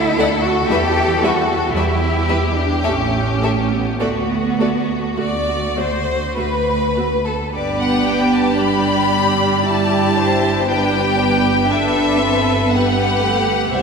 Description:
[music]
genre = classical, slow romantic movement for string orchestra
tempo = 50-60 BPM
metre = 3/4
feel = rubato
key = G major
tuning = A4 = 440 Hz
[part]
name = rich studio violin section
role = melody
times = 0.0-13.8 s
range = F#4 to B5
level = -21 LUFS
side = left 4 dB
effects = none
[part]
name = clear studio cello section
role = bass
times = 0.0-13.8 s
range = G2 to G4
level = -23 LUFS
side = right 1 dB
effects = none
[part]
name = warm studio double bass section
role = bass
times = 0.0-13.8 s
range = G1 to E2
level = -22 LUFS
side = right 3 dB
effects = none
[part]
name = rich studio violin section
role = second line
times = 0.2-13.8 s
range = G4 to F#5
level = -21 LUFS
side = left 2 dB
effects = none
[part]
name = rich studio viola section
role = accompaniment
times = 0.2-13.8 s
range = G3 to A4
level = -21 LUFS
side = right 3 dB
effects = none
[sound]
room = wet church reverb, RT60 3.0 s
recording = none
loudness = -15 LUFS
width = side -5 dB against mid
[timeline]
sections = 0.0-7.5 A section; 7.5-13.8 B section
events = none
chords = 0.0 D; 0.7 Em; 2.9 A7; 4.0 D; 7.5 G

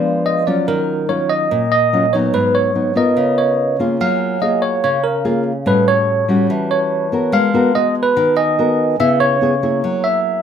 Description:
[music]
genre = bossa nova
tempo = 144 BPM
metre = 4/4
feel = straight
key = unclear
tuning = A4 = 439 Hz
[part]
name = bell-like tine electric piano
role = melody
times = 0.0-10.4 s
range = Bb4 to F5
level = -16 LUFS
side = right 1 dB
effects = medium stereo tremolo
[part]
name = nylon-string guitar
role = accompaniment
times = 0.0-10.4 s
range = Ab2 to Bb4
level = -17 LUFS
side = left 1 dB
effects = none
[part]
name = vibraphone with medium hard mallets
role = accompaniment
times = 0.0-9.2 s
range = Db5 to A5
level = -25 LUFS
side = right 3 dB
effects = none
[sound]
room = wet small room reverb, RT60 0.5 s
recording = rough home demo mix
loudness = -14 LUFS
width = side -8 dB against mid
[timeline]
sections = 0.0-4.0 A section; 4.0-10.4 B section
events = none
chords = 0.0 Bb7b9 (rootless); 0.7 Ebm9; 2.3 Abm7; 3.2 Db13; 4.0 Gbmaj9; 5.7 A13; 7.3 Abm9; 9.0 Dbm7; 9.8 Gb9

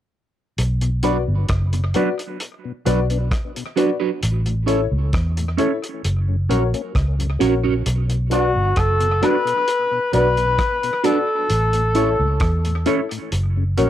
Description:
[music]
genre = roots reggae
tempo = 66 BPM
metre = 4/4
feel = straight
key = B minor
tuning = A4 = 439 Hz
[part]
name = vintage muted fingered electric bass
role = bass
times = 0.6-13.9 s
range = F#1 to E2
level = -20 LUFS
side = equal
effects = none
[part]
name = cloth-damped thuddy drum kit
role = drums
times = 0.6-13.9 s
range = hi-hat, kick drum, rim click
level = -26 LUFS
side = equal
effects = tape echo
[part]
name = mellow tonewheel organ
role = accompaniment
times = 0.8-13.9 s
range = F#2 to D4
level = -30 LUFS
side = left 8 dB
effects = chorus vibrato, slow rotary speaker, cassette tape, tape echo
[part]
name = clean electric guitar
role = accompaniment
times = 1.0-13.9 s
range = F#3 to D5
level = -23 LUFS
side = right 8 dB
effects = phaser, cassette tape, tape echo
[part]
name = dark upright piano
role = stabs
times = 1.0-13.9 s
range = E4 to D5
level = -23 LUFS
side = left 9 dB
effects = cassette tape
[part]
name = clear flugelhorn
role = melody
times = 8.3-12.9 s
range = F#4 to B4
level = -19 LUFS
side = left 1 dB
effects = cassette tape, tape echo
[sound]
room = light reverb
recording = home recording on cassette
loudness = -17 LUFS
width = side -11 dB against mid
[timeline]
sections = 0.6-7.9 A section; 7.9-13.9 B section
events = none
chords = 0.6 Bm; 4.2 A; 6.0 F#; 7.9 Bm; 11.5 A; 13.3 F#

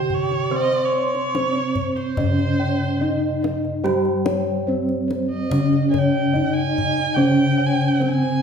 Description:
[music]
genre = Javanese gamelan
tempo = 72 BPM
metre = 4/4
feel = straight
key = C pelog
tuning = A4 = 440 Hz
[part]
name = gamelan-type bronze metallophone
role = melody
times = 0.0-8.4 s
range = C4 to C5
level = -22 LUFS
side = right 1 dB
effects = none
[part]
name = warm erhu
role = second line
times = 0.0-8.4 s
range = C5 to Ab5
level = -26 LUFS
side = right 4 dB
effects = none
[part]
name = gamelan-type bronze metallophone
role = accompaniment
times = 0.0-8.4 s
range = Db3+20c to C4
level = -26 LUFS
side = left 1 dB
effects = none
[part]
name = gamelan-type bossed gongs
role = arpeggios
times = 0.0-8.4 s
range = C5 to G5-30c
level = -29 LUFS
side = left 4 dB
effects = none
[part]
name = gamelan-type bronze metallophone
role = arpeggios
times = 0.0-8.4 s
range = C5 to C6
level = -31 LUFS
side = right 4 dB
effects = none
[part]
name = gamelan-type bossed gongs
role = bass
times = 0.0-8.1 s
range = G2-30c to C5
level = -25 LUFS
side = left 1 dB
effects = none
[part]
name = kendang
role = percussion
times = 0.1-8.3 s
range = none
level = -30 LUFS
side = left 2 dB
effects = none
[sound]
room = wet recital hall reverb, RT60 1.4 s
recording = recorded in a church or concert hall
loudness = -18 LUFS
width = side -7 dB against mid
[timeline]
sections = 0.0-8.4 A section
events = none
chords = none

